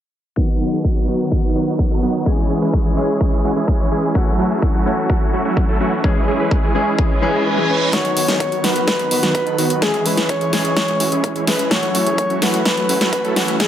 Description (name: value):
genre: EDM, festival progressive house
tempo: 127 BPM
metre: 4/4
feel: straight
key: unclear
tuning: A4 = 441 Hz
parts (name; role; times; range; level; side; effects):
- warm grand piano; accompaniment; 0.4-13.7 s; D#3 to G#4; -24 LUFS; left 4 dB; sidechain pumping, dub echo
- lush unison pad; sustained chords; 0.4-13.7 s; D#3 to A4; -26 LUFS; right 1 dB; chorus, sidechain pumping
- supersaw chords; riff; 0.4-13.7 s; D#3 to C#5; -21 LUFS; right 2 dB; sidechain pumping, low-pass filter, dub echo
- electronic kick drum; drums; 0.4-13.7 s; none; -19 LUFS; equal; high-pass filter on kick, high-pass filter on room
- reverse cymbal; sound effects; 7.2-7.9 s; none; -24 LUFS; right 5 dB; none
- breathy flute-like synth lead; melody; 7.7-13.7 s; G#4 to C#5; -20 LUFS; equal; chorus, tremolo, dub echo
- big-room dance drum kit; drums; 7.9-13.7 s; hi-hat, snare drum; -20 LUFS; equal; none
room: light reverb, digital ambience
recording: low-pass filter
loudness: -15 LUFS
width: side -10 dB against mid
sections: 0.4-7.9 A section; 7.9-13.7 B section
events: filter sweep 0.4-7.9; reverse cymbal 7.2-7.9; kick drops out 7.5-7.9; build-up 7.9-13.7; drum fill 7.9-13.7; filter sweep on supersaw synth 7.9-13.7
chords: 0.4 B; 2.3 C#m; 4.2 F#m7; 6.0 C#m; 7.9 B; 9.8 C#m; 11.7 F#m7